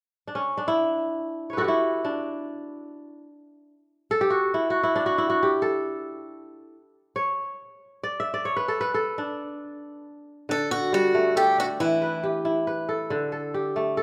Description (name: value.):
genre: west african traditional.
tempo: free time.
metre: none.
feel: none.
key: D major.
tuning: A4 = 440 Hz.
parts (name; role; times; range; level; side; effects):
kora; arpeggios; 0.3-14.0 s; D3 to E5; -27 LUFS; equal; none.
picked swing-style acoustic guitar; melody; 10.5-12.3 s; E4 to A4; -26 LUFS; equal; none.
room: moderate recital hall reverb, RT60 1.8 s.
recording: none.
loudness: -25 LUFS.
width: mono.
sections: 0.0-10.5 A section; 10.5-14.0 B section.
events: kora solo 0.0-10.5.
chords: 0.0 D; 11.8 Em; 13.1 D5.